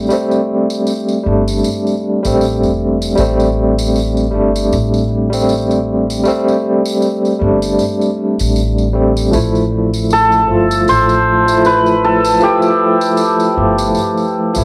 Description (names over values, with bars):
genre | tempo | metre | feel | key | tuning
trip hop | 78 BPM | 4/4 | swing 57% on 16ths | A minor | A4 = 441 Hz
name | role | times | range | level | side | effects
barky tine electric piano | accompaniment | 0.0-14.6 s | F3 to F4 | -16 LUFS | equal | tremolo, cassette tape, tape echo
upright bass | bass | 0.0-14.6 s | E1 to A1 | -21 LUFS | equal | none
tambourine | percussion | 0.1-14.6 s | none | -30 LUFS | equal | none
hammered dulcimer | melody | 10.1-14.6 s | G4 to C5 | -15 LUFS | equal | cassette tape, tape echo
room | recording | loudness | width
moderate spring reverb, RT60 1.4 s, studio reverb | home recording on cassette | -14 LUFS | mono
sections
0.0-14.6 A section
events
none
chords
0.0 Am7; 9.3 Fmaj7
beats
| 0.10 0.87 1.64 2.41 | 3.18 3.95 4.72 5.49 | 6.26 7.03 7.80 8.57 | 9.34 10.10 10.87 11.64 | 12.41 13.18 13.95